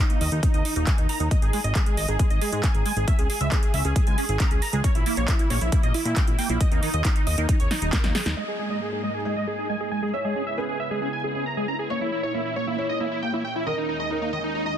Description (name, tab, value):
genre	uplifting trance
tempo	136 BPM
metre	4/4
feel	straight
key	G# minor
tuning	A4 = 440 Hz
part	dense compressed supersaw	melody	0.0-14.8 s	D#4 to A#5	-28 LUFS	right 1 dB	sidechain pumping, low-pass filter, dub echo
part	liquid acid bass	arpeggios	0.1-14.8 s	D#3 to E4	-32 LUFS	right 1 dB	ensemble chorus, sidechain pumping, ping-pong delay
part	big-room dance drum kit	drums	0.1-8.3 s	handclaps, hi-hat, snare drum	-31 LUFS	right 2 dB	small room ambience
part	fat analog bass	bass	0.2-8.4 s	D#1 to A#2	-26 LUFS	equal	sidechain pumping
part	electronic kick drum	drums	0.4-8.0 s	none	-21 LUFS	equal	small room ambience
part	felt-muted upright piano	second line	8.4-14.7 s	A#4 to D#5	-33 LUFS	equal	tape echo
part	lush unison pad	sustained chords	8.4-14.8 s	D#2 to E4	-34 LUFS	equal	chorus, sidechain pumping
room	little or no reverb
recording	dense, heavily limited modern master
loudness	-22 LUFS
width	side -10 dB against mid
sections	0.0-8.4 A section; 8.4-14.8 B section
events	filter sweep on acid bass 0.0-8.4, 8.4-14.8; drum fill 7.7-8.4; band accent 8.3; filter sweep on supersaw synth 8.4-14.8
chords	0.0 D#5; 1.3 G#5; 3.1 C#5; 4.8 A#dim7; 6.6 D#5; 8.4 G#sus2; 10.1 C#m7; 11.9 A#dim; 13.7 D#7sus4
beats	0.43 0.87 | 1.31 1.75 2.19 2.63 | 3.08 3.52 3.96 4.40 | 4.84 5.28 5.72 6.17 | 6.61 7.05 7.49 7.93 | 8.37 8.81 9.25 9.69 | 10.13 10.58 11.02 11.46 | 11.90 12.34 12.78 13.22 | 13.66 14.11 14.55